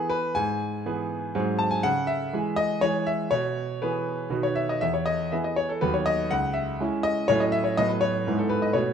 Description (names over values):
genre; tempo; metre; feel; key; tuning
classical-period piano sonatina; 122 BPM; 3/4; straight; E major; A4 = 441 Hz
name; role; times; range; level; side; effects
clear concert grand piano; solo; 0.0-8.9 s; C#2 to A5; -23 LUFS; equal; none
room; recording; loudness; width
moderate recital hall reverb, RT60 1.7 s; close, detailed microphones; -23 LUFS; side -7 dB against mid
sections
0.0-8.9 A section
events
none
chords
0.4 E/G#; 1.3 G#7; 1.8 C#m; 3.3 E/B; 4.3 B; 4.8 E; 5.8 B/D#; 6.3 C#m; 7.3 F#m7/A; 7.8 B5/A; 8.3 E/G#